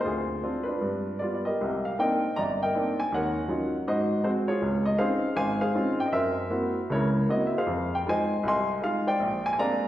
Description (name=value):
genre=solo jazz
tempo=157 BPM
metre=4/4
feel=swing 65% on 8ths, rubato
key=C minor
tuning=A4 = 440 Hz
part: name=clear upright piano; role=solo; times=0.0-9.9 s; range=G1 to C6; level=-24 LUFS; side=equal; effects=none
room=wet recital hall reverb, RT60 1.5 s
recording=recorded in a church or concert hall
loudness=-24 LUFS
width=side -13 dB against mid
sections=0.0-1.6 A section; 1.6-9.9 B section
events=none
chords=0.1 Dm7b5; 0.8 G7; 1.6 Cm9; 3.1 Ebm9; 3.9 Ab7; 4.6 Dbmaj9; 6.1 F#7#11; 7.7 Fm7; 9.2 Bb9